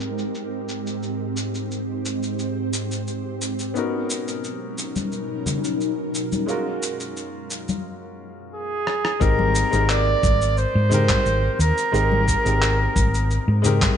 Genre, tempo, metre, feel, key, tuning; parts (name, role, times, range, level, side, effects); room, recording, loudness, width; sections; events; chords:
sunset chillout; 88 BPM; 4/4; straight; A4 = 440 Hz
clear grand piano; accompaniment; 0.0-14.0 s; Ab3 to Bb4; -27 LUFS; moving between left 8 dB and right 4 dB; auto-pan, digital delay
ethereal airy pad; sustained chords; 0.0-7.8 s; Gb2 to F5; -27 LUFS; right 1 dB; ensemble chorus, built-in reverb
electronic shaker, rim click and handclaps; drums; 0.0-14.0 s; -28 LUFS; equal; low-pass filter on perc, low-pass filter on snare, low-pass filter on room
congas; percussion; 5.0-14.0 s; -28 LUFS; left 4 dB
clear flugelhorn; melody; 8.5-13.6 s; Ab4 to D5; -22 LUFS; right 2 dB; digital delay
hollow-body short-scale fingered electric bass; bass; 9.2-13.9 s; Ab1 to Ab2; -20 LUFS; equal; tube saturation
electronic kick drum; drums; 9.2-14.0 s; -22 LUFS; equal
moderate recital hall reverb, RT60 1.6 s, digital ambience; nothing above 10.6 kHz; -20 LUFS; side -8 dB against mid
0.0-9.2 A section; 9.2-14.0 B section
filter sweep on drum 0.0-9.2; drum fill 8.9-9.2
0.0 Abmaj9; 3.8 Cbmaj9; 6.5 Gbmaj9; 9.2 Abmaj9